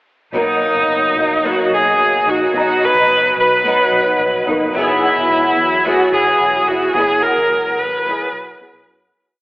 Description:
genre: indie pop, bedroom pop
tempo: 109 BPM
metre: 4/4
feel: straight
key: B major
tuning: A4 = 440 Hz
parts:
  - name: clear viola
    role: melody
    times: 0.3-8.9 s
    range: D#4 to B4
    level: -14 LUFS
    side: equal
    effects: analog chorus, tape echo
  - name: flamenco guitar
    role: accompaniment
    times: 0.3-9.4 s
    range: B2 to G#4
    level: -19 LUFS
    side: left 1 dB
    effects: ensemble chorus, vibrato effect
  - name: reed electric piano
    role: accompaniment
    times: 0.3-9.2 s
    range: F#3 to A#5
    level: -26 LUFS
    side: equal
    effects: fast tremolo, cassette tape
  - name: vintage muted fingered electric bass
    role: bass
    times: 0.3-9.1 s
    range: E1 to F#2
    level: -38 LUFS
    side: equal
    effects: none
room: wet huge ambient reverb, RT60 4.0 s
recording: dreamy mix soaked in reverb, telephone sound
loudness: -12 LUFS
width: side -21 dB against mid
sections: 0.3-9.2 verse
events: fade-out 7.0-9.2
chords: 0.3 Bmaj7; 4.8 F#9sus4

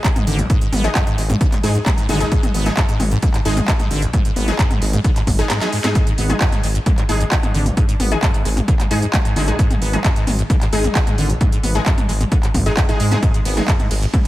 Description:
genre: driving peak-time techno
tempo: 132 BPM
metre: 4/4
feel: straight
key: unclear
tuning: A4 = 440 Hz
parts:
  - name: acid bass, saw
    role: riff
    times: 0.0-14.3 s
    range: G#1 to B3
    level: -24 LUFS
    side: equal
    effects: wide subtle chorus, sidechain pumping, diffuse ambient delay
  - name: electronic kick drum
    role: drums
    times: 0.0-14.2 s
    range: none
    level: -17 LUFS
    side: equal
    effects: none
  - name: techno drum kit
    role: drums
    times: 0.0-14.3 s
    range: handclaps, hi-hat, ride cymbal, snare drum, toms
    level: -23 LUFS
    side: equal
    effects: sidechain pumping on hats, sidechain pumping on toms, sidechain pumping on cymbals
  - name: detuned saw bass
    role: bass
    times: 0.3-14.1 s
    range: G#1 to G#2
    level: -19 LUFS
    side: equal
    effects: tube saturation, sidechain pumping
  - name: rave stab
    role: stabs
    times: 0.8-13.6 s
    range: G#3 to G#4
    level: -25 LUFS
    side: left 1 dB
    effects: chorus, built-in reverb, sidechain pumping, diffuse ambient delay
room: light reverb, digital ambience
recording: none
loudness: -15 LUFS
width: side -16 dB against mid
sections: 0.0-14.3 A section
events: kick drops out 5.5-6.0; drum fill 5.5-6.0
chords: 0.0 G#5

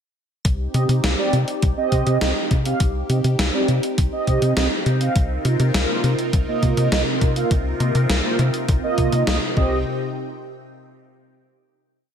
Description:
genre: synthwave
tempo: 102 BPM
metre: 4/4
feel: straight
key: C minor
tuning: A4 = 440 Hz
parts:
  - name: tight sequencer bass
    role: bass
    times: 0.4-9.8 s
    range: C2 to C3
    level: -20 LUFS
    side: left 1 dB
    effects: none
  - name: electronic kick drum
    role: drums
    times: 0.4-9.7 s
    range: none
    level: -20 LUFS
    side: left 1 dB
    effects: none
  - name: gated 80s digital drum machine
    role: drums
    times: 0.4-9.4 s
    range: hi-hat, snare drum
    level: -24 LUFS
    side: left 1 dB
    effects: gated reverb, gated reverb snare
  - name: phased analog pad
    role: sustained chords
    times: 0.5-9.8 s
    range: C3 to G5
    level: -27 LUFS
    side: left 1 dB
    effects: phaser, chorus, sidechain pumping
  - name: mellow synth brass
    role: stabs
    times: 0.7-9.8 s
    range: Bb3 to F5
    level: -24 LUFS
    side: right 4 dB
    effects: chorus, digital delay
room: light reverb, digital ambience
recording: none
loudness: -18 LUFS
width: side -8 dB against mid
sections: 0.4-9.9 verse; 9.9-12.1 final hit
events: none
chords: 0.4 Cm; 5.2 Ebsus2/C; 9.6 Cm; 9.9 N.C.

